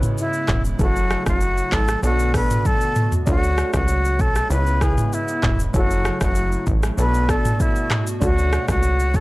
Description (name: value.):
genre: afrobeats.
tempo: 97 BPM.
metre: 4/4.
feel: straight.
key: F# minor.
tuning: A4 = 435 Hz.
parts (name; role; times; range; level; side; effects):
warm grand piano; accompaniment; 0.0-9.2 s; B2 to B4; -28 LUFS; equal; none.
hollow soft pad; sustained chords; 0.0-9.2 s; B2 to C#5; -31 LUFS; equal; chorus.
plucky analog bass; bass; 0.0-9.2 s; E1 to D2; -21 LUFS; equal; none.
afro-pop drum kit; drums; 0.0-9.2 s; handclaps, hi-hat, kick drum, rim click, shaker, toms; -21 LUFS; equal; none.
breathy concert flute; melody; 0.2-9.2 s; E4 to B4; -23 LUFS; equal; none.
room: little or no reverb.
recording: dry, gritty hardware recording, transformer saturation.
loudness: -17 LUFS.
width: side -20 dB against mid.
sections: 0.0-9.2 A section.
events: drum fill 2.7-3.3.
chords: 0.0 C#m7; 0.8 F#m7; 2.0 Bm7; 3.3 Dmaj7; 4.5 C#m7; 5.7 F#m7; 7.0 Bm7; 8.2 Dmaj7.